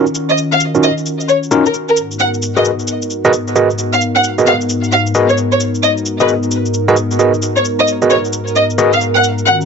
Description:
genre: UK garage, two-step garage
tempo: 132 BPM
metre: 4/4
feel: swing 64% on 16ths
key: unclear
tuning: A4 = 440 Hz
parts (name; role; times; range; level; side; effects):
- warm analog pad; sustained chords; 0.0-9.7 s; Ab2 to Bb4; -18 LUFS; left 1 dB; chorus
- overdriven tine electric piano; stabs; 0.0-8.9 s; Db4 to Eb5; -13 LUFS; moving between left 5 dB and right 6 dB; auto-pan, low-pass filter, digital delay
- cabasa; drums; 0.1-9.7 s; none; -24 LUFS; left 2 dB; none
- dark studio violin section; melody; 0.3-9.5 s; Bb4 to Gb5; -14 LUFS; equal; digital delay
room: moderate small room reverb, RT60 0.5 s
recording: nothing above 7.7 kHz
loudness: -11 LUFS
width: side -6 dB against mid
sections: 0.0-9.7 A section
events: filter sweep on analog synth pad 0.0-9.7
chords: 0.0 Ebm9; 2.0 Abm9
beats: | 0.38 0.83 1.28 1.74 | 2.19 2.65 3.10 3.56 | 4.01 4.47 4.92 5.38 | 5.83 6.28 6.74 7.19 | 7.65 8.10 8.56 9.01 | 9.47

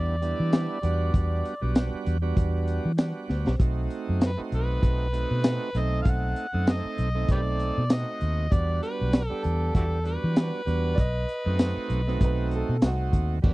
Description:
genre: straight-eighth soul blues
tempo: 98 BPM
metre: 4/4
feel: swing 56% on 16ths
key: E minor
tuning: A4 = 438 Hz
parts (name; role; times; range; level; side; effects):
- overdriven harmonica; melody; 0.0-12.5 s; E4 to F#5; -32 LUFS; equal; none
- bright tonewheel organ; accompaniment; 0.0-13.5 s; G3 to A4; -33 LUFS; right 4 dB; slow rotary speaker, overdrive
- vintage muted fingered electric bass; bass; 0.0-13.5 s; B1 to E3; -26 LUFS; equal; none
- crunchy breakbeat drum kit; drums; 0.2-13.5 s; crash cymbal, hi-hat, kick drum, snare drum, tambourine; -23 LUFS; equal; vintage 12-bit sampler grit
- bright upright piano; second line; 10.9-13.3 s; F#4 to D#5; -35 LUFS; right 2 dB; none
room: little or no reverb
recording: dry, close 1970s-style studio recording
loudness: -23 LUFS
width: side -20 dB against mid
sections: 0.0-13.4 A section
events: drum fill 3.3-3.6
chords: 0.0 Em7; 3.6 B7b9; 8.5 Em7; 11.0 B7b9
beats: 0.53 | 1.14 1.76 2.37 2.99 | 3.60 4.22 4.83 5.45 | 6.06 6.68 7.29 7.91 | 8.52 9.14 9.75 10.37 | 10.98 11.60 12.21 12.83 | 13.44

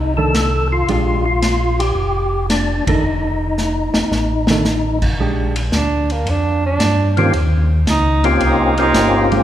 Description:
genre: soul jazz organ trio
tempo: 112 BPM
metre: 4/4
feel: swing 69% on 8ths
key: unclear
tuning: A4 = 440 Hz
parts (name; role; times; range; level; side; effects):
- percussive tonewheel organ; melody; 0.0-9.4 s; Bb3 to A4; -18 LUFS; left 2 dB; slow rotary speaker, overdrive, chorus vibrato
- mellow tonewheel organ; bass; 0.0-9.4 s; F1 to G2; -18 LUFS; equal; slow rotary speaker
- hollow-body jazz guitar; accompaniment; 0.2-9.4 s; Eb3 to C5; -23 LUFS; right 3 dB; none
- vintage drum kit; drums; 0.3-9.4 s; crash cymbal, hi-hat, kick drum, ride cymbal, snare drum; -22 LUFS; equal; none
- breathy tenor saxophone; melody; 5.8-9.3 s; Bb3 to Eb4; -19 LUFS; right 3 dB; none
room: moderate concert hall reverb, RT60 2.4 s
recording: recorded in a church or concert hall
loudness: -14 LUFS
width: side -11 dB against mid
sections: 0.0-5.2 A section; 5.2-9.4 B section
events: band accent 2.8; drum fill 3.6-4.7; tenor saxophone solo 5.2-9.4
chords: 0.0 F6; 0.9 Bb6; 3.0 F; 5.2 Bb13; 7.3 Eb13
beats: 0.35 | 0.89 1.43 1.97 2.50 | 3.04 3.58 4.12 4.66 | 5.19 5.73 6.27 6.81 | 7.34 7.88 8.42 8.95

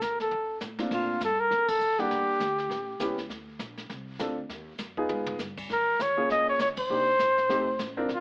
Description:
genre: jazz, small-group swing and bop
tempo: 201 BPM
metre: 4/4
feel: swing 60% on 8ths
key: Bb major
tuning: A4 = 442 Hz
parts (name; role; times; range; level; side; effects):
- warm flugelhorn; melody; 0.0-3.2, 5.7-8.2 s; F4 to Eb5; -25 LUFS; equal; plate reverb
- upright bass; bass; 0.0-8.2 s; F1 to Bb2; -43 LUFS; equal; none
- jazz brush drum kit; drums; 0.0-8.2 s; brushed snare drum, crash cymbal, hi-hat, kick drum, ride cymbal, snare drum, toms; -38 LUFS; equal; none
- warm upright piano; accompaniment; 0.8-8.1 s; Bb2 to Gb5; -31 LUFS; equal; none
room: moderate studio reverb, RT60 0.6 s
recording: AM radio sound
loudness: -25 LUFS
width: side -25 dB against mid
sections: 0.9-8.2 A section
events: drum fill 0.3-0.9, 5.1; band accent 1.7, 6.7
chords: 0.3 F; 0.9 Bbmaj7; 2.1 Em7b5; 2.7 A7; 3.3 Dm7; 4.5 Abm7; 5.1 G7b9b13; 5.7 Gbmaj9; 6.9 Cm7; 7.5 F7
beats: 0.01 0.31 0.61 | 0.91 1.21 1.51 1.81 | 2.11 2.41 2.71 3.01 | 3.31 3.61 3.91 4.21 | 4.50 4.80 5.10 5.40 | 5.70 6.00 6.30 6.60 | 6.89 7.19 7.49 7.79 | 8.09

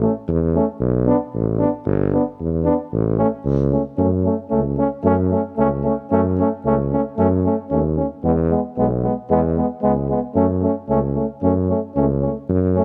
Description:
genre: balkan folk, Balkan brass band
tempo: 113 BPM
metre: 2/4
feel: swing 56% on 16ths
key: A mixolydian, F# minor from 4.0 s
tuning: A4 = 440 Hz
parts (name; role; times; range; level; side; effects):
- warm euphonium; accompaniment; 0.0-12.8 s; G#3 to B3; -24 LUFS; equal; none
- warm trombone; accompaniment; 0.0-12.8 s; B3 to D4; -25 LUFS; equal; none
- mellow tuba; bass; 0.0-12.8 s; G1 to F#2; -22 LUFS; equal; none
room: little or no reverb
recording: close, detailed microphones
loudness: -19 LUFS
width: mono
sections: 0.0-4.0 A section; 4.0-12.5 B section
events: none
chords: 0.0 A; 0.8 Bm; 1.9 G; 2.9 A; 4.0 F#m; 8.2 E; 10.4 F#m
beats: 0.29 | 0.82 1.35 | 1.87 2.40 | 2.93 3.46 | 3.98 4.51 | 5.04 5.57 | 6.10 6.63 | 7.17 7.70 | 8.23 8.76 | 9.30 9.83 | 10.36 10.90 | 11.43 11.96 | 12.50

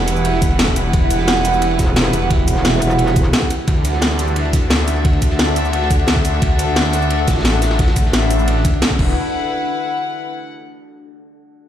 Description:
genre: dark technical drum and bass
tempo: 175 BPM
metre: 4/4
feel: straight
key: E minor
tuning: A4 = 440 Hz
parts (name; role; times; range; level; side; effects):
- deep dark ambient pad; sustained chords; 0.0-9.2 s; D4 to F#5; -22 LUFS; equal; chorus, built-in reverb, sidechain pumping
- snarling distorted saw bass; bass; 0.0-9.2 s; E1 to D2; -18 LUFS; equal; distortion, overdrive, sidechain pumping
- bright chamber string section; texture; 0.0-10.5 s; D4 to F#5; -23 LUFS; equal; sidechain pumping
- crunchy breakbeat drum kit; drums; 0.1-8.9 s; ride cymbal, snare drum; -29 LUFS; equal; high-pass filter on cymbals, high-pass filter on snare, high-pass filter on room
- drum and bass drum kit; drums; 0.1-9.1 s; crash cymbal, hi-hat, shaker, snare drum; -20 LUFS; equal; overdrive
- electronic kick drum; drums; 0.4-9.1 s; none; -16 LUFS; equal; overdrive
- metallic wobble bass; bass; 1.8-3.3 s; E1; -17 LUFS; equal; distortion, chorus
room: light reverb, digital ambience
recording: played on a big sound system in a bare room, large studio reverb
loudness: -14 LUFS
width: side -10 dB against mid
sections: 0.0-9.2 A section; 9.2-10.5 B section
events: drop 0.0-9.2; band accent 8.8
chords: 0.0 Emadd9; 3.7 D; 9.0 Emadd9; 9.2 Esus2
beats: 0.25 0.59 | 0.93 1.28 1.62 1.96 | 2.31 2.65 2.99 3.33 | 3.68 4.02 4.36 4.71 | 5.05 5.39 5.73 6.08 | 6.42 6.76 7.11 7.45 | 7.79 8.13 8.48 8.82 | 9.16 9.51 9.85 10.19

